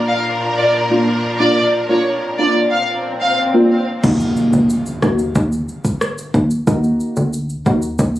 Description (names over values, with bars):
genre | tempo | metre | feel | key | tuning
dancehall | 91 BPM | 4/4 | straight | Eb harmonic minor | A4 = 442 Hz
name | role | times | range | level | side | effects
warm symphonic string section | sustained chords | 0.0-4.0 s | Bb2 to Bb4 | -21 LUFS | equal | none
swell and impact | sound effects | 2.7-6.7 s | none | -26 LUFS | equal | none
warm studio violin section | melody | 0.1-3.3 s | Db5 to F5 | -18 LUFS | left 1 dB | tape echo
deep mellow chord stab | accompaniment | 0.9-7.8 s | Bb3 to Gb4 | -16 LUFS | equal | chorus, phaser, sidechain pumping
plucky analog bass | bass | 4.0-8.2 s | D2 to Eb2 | -18 LUFS | equal | none
afro-pop drum kit | drums | 4.0-8.2 s | crash cymbal, kick drum, rim click, shaker | -21 LUFS | equal | none
room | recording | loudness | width
light reverb, digital ambience | recorded on a phone in the room, studio ambience, compression | -14 LUFS | side -14 dB against mid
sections
0.0-4.0 A section; 4.0-8.2 B section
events
swell 2.7-4.0; impact 4.0-6.7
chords
0.0 Bb; 4.0 Ebm